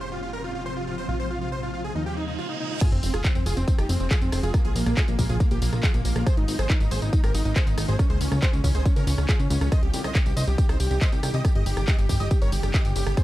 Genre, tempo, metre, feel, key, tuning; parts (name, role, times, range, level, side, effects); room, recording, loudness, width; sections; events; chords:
uplifting trance; 139 BPM; 4/4; straight; F minor; A4 = 443 Hz
big supersaw lead; melody; 0.0-13.2 s; Bb3 to Eb5; -33 LUFS; right 1 dB; sidechain pumping, digital delay
shimmering ambient pad; sustained chords; 0.0-13.2 s; Ab2 to Ab4; -34 LUFS; equal; chorus, built-in reverb, sidechain pumping
plucky analog bass; bass; 0.0-13.1 s; F1 to Eb2; -26 LUFS; equal; sidechain pumping
reverse cymbal and sub drop; sound effects; 2.1-4.5 s; -35 LUFS; right 1 dB
plucky unison lead; second line; 2.8-13.2 s; Bb3 to Eb5; -33 LUFS; equal; sidechain pumping, digital delay
electronic kick drum; drums; 2.8-13.2 s; -22 LUFS; equal
punchy analog drum machine; drums; 2.8-13.2 s; crash cymbal, handclaps, hi-hat, rim click, tambourine; -32 LUFS; equal
digital ambience; dark, warm production; -21 LUFS; side -16 dB against mid
0.0-2.8 A section; 2.8-13.2 B section
reverse cymbal 2.1-2.8; drop 2.8-13.2; impact 2.8-4.5
0.0 Fm; 1.1 Bbm7; 1.9 Eb; 2.8 Fm; 4.5 Bbm7; 6.3 Abadd9; 8.0 Db; 9.7 Cm; 11.4 Gdim